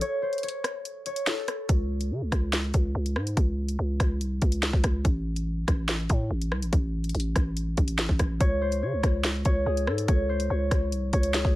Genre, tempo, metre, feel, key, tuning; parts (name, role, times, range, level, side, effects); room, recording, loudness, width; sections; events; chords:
hip hop, drill; 143 BPM; 4/4; half-time; A4 = 441 Hz
concert harp; melody; 0.0-3.5, 8.4-11.6 s; G#4 to C#5; -30 LUFS; left 1 dB
drill drum kit; drums; 0.0-11.5 s; hi-hat, kick drum, rim click, snare drum; -25 LUFS; equal
growling 808-style bass; bass; 1.7-11.5 s; A1 to C#3; -28 LUFS; equal
little or no reverb; -24 LUFS; side -17 dB against mid
0.0-1.7 A section; 1.7-11.6 B section
break 0.0-1.7
0.0 A; 1.7 C#5; 5.0 N.C.; 8.4 C#5